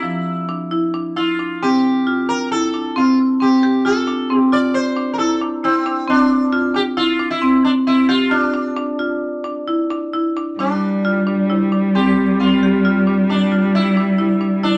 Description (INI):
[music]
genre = contemporary instrumental, chamber music in an uneven meter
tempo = 134 BPM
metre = 5/4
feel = straight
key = D minor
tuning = A4 = 440 Hz
[part]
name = sitar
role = melody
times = 0.0-14.8 s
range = C4 to D5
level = -24 LUFS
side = equal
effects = none
[part]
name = marimba with hard mallets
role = arpeggios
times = 0.0-14.8 s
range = F3 to G4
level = -19 LUFS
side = equal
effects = none
[part]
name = warm cello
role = second line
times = 10.6-14.8 s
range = G3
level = -18 LUFS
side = equal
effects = none
[sound]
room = moderate studio reverb, RT60 0.6 s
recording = none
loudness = -17 LUFS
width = mono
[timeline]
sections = 0.0-10.6 A section; 10.6-14.8 A section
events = none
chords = 0.0 Dm; 1.6 F; 8.3 Dm; 10.6 Dm7